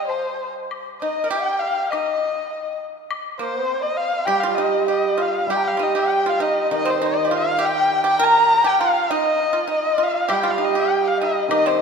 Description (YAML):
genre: chinese traditional, Chinese chamber ensemble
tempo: 100 BPM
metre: 2/4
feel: rubato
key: unclear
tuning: A4 = 440 Hz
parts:
  - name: dark erhu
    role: melody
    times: 0.0-11.8 s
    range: C5 to Bb5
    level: -21 LUFS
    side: equal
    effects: none
  - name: mellow large dizi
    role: second line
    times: 0.0-11.8 s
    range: C5 to Bb5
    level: -24 LUFS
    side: left 5 dB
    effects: none
  - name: woodblock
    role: percussion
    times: 0.1-4.4, 10.3-11.6 s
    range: none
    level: -33 LUFS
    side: left 5 dB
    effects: none
  - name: pipa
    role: second line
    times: 1.0-11.8 s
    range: C4 to Bb4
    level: -25 LUFS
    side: right 4 dB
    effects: none
  - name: hammered dulcimer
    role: accompaniment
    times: 4.3-11.8 s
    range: Eb3 to G3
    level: -24 LUFS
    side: right 6 dB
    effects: none
room: wet church reverb, RT60 2.6 s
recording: recorded in a church or concert hall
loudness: -18 LUFS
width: side -5 dB against mid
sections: 0.0-5.5 A section; 5.5-11.8 B section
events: none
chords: none